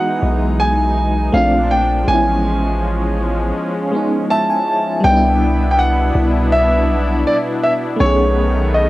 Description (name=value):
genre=R&B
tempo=81 BPM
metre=4/4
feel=straight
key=unclear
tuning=A4 = 439 Hz
part: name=clear grand piano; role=melody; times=0.0-8.9 s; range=C#5 to A5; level=-18 LUFS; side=equal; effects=cassette tape
part: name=FM electric piano with tremolo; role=accompaniment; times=0.0-8.9 s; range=D#3 to A5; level=-21 LUFS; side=left 1 dB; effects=phaser
part: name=warm analog pad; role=sustained chords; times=0.0-8.9 s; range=A#2 to E4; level=-21 LUFS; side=equal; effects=chorus, tremolo
part: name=long sustained 808-style bass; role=bass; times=0.2-8.9 s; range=A1 to C2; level=-17 LUFS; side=equal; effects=none
room=light reverb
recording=home recording on cassette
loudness=-13 LUFS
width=side -17 dB against mid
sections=0.0-5.0 A section; 5.0-8.9 B section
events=FM electric piano fill 3.9-5.0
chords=0.0 Emaj9/B; 1.3 A#maj7; 2.1 Amaj7; 5.0 Cmaj9; 8.0 B13